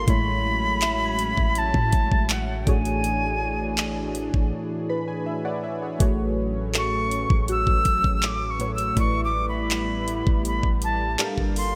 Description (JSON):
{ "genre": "contemporary R&B", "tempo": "81 BPM", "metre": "4/4", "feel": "straight", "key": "A major", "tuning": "A4 = 442 Hz", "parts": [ { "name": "jazz flute", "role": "melody", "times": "0.0-11.8 s", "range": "F#5 to E6", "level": "-28 LUFS", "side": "equal", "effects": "delay" }, { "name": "warm analog keys", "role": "accompaniment", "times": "0.0-11.8 s", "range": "A2 to B5", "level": "-32 LUFS", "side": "equal", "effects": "chorus" }, { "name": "lush unison pad", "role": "sustained chords", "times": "0.0-11.8 s", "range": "E3 to A5", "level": "-35 LUFS", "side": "equal", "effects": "chorus, sidechain pumping" }, { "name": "clean 808-style bass", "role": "bass", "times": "0.0-11.8 s", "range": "G1 to A2", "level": "-30 LUFS", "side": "equal", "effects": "none" }, { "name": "smooth R&B drum kit", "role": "drums", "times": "0.1-11.7 s", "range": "handclaps, hi-hat, kick drum", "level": "-27 LUFS", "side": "equal", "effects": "none" }, { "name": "soft synth bell", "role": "texture", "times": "0.8-11.8 s", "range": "F#4 to G#6", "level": "-38 LUFS", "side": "equal", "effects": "chorus, delay" } ], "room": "moderate plate reverb, RT60 3.0 s", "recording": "bright 1980s-style digital production", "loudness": "-24 LUFS", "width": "mono", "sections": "0.0-11.8 A section", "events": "break 4.5-6.0; synth keys fill 4.5-6.0", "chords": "0.1 F#m9/A; 2.7 E13/A; 6.0 A69; 9.0 G69/A; 11.2 Gm9" }